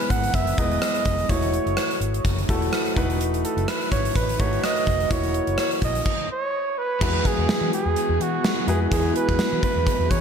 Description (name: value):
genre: 1980s-style pop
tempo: 126 BPM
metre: 4/4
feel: swing 55% on 16ths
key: E major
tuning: A4 = 440 Hz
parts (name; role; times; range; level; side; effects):
- warm flugelhorn; melody; 0.0-10.2 s; F#4 to F#5; -26 LUFS; right 3 dB; digital delay, shimmer reverb, slapback echo
- clear baby grand piano; accompaniment; 0.0-10.2 s; E3 to A5; -27 LUFS; left 1 dB; shimmer reverb, slapback echo
- gated 80s drum kit; drums; 0.0-10.2 s; crash cymbal, hi-hat, kick drum, rim click, snare drum, tambourine; -24 LUFS; equal; none
- vintage muted fingered electric bass; bass; 0.1-10.2 s; E1 to E3; -26 LUFS; left 1 dB; none
- overdriven electric guitar; accompaniment; 7.0-10.2 s; E2 to E3; -34 LUFS; left 1 dB; none
- string machine, violas; sustained chords; 7.0-10.2 s; E3 to G#4; -31 LUFS; equal; ensemble chorus, shimmer reverb
room: moderate lush hall reverb, RT60 1.6 s, small room ambience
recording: big arena sound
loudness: -20 LUFS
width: side -7 dB against mid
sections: 0.0-7.0 A section; 7.0-10.2 B section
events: grand piano fill 2.5-3.2; stop 6.1-7.0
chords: 0.0 E; 1.3 F#m7/E; 3.0 B7/E; 5.1 F#7/E; 6.1 N.C.; 7.0 Eadd9